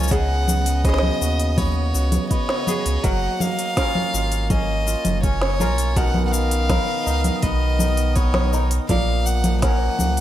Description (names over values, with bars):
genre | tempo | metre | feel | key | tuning
folktronica | 82 BPM | 4/4 | straight | F# major | A4 = 440 Hz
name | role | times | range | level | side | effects
warm violin | melody | 0.0-10.2 s | C#5 to F#5 | -26 LUFS | equal | ping-pong delay
hand-pumped harmonium | sustained chords | 0.0-10.2 s | C#3 to A#4 | -30 LUFS | equal | none
kora | arpeggios | 0.0-10.2 s | A#2 to A#4 | -27 LUFS | equal | ping-pong delay
warm sub bass | bass | 0.0-10.2 s | F#1 to D#2 | -21 LUFS | equal | none
organic electronic drum kit | drums | 0.0-10.2 s | congas, hi-hat, shaker, snare drum | -24 LUFS | equal | overdrive
backwards swelling texture | texture | 0.0-10.2 s | D#5 | -38 LUFS | right 1 dB | none
electronic kick drum | drums | 0.1-9.8 s | none | -22 LUFS | equal | overdrive
room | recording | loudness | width
little or no reverb | none | -18 LUFS | side -12 dB against mid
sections
0.0-10.2 A section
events
none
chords
0.1 C#7sus4; 3.0 F#maj7; 6.0 Bmaj7; 8.9 F#maj7/A#